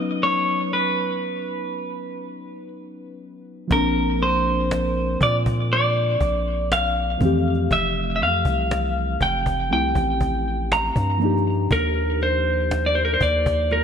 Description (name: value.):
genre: contemporary R&B.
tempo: 60 BPM.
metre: 4/4.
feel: straight.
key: Bb major.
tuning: A4 = 438 Hz.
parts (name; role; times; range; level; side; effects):
muted felt-like synth keys; accompaniment; 0.0-13.8 s; E3 to B4; -26 LUFS; left 1 dB; chorus.
clean electric guitar; melody; 0.2-13.8 s; Bb4 to Bb5; -22 LUFS; equal; digital delay.
long sustained 808-style bass; bass; 3.7-13.8 s; F1 to Bb2; -24 LUFS; equal; none.
cajon; drums; 3.7-13.8 s; none; -27 LUFS; equal; none.
room: light reverb, digital ambience.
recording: bright 1980s-style digital production.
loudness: -19 LUFS.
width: side -7 dB against mid.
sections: 0.0-13.8 A section.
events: none.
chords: 0.0 Badd9; 3.7 Bbadd9; 7.2 Fmaj9; 11.2 Ebmaj9.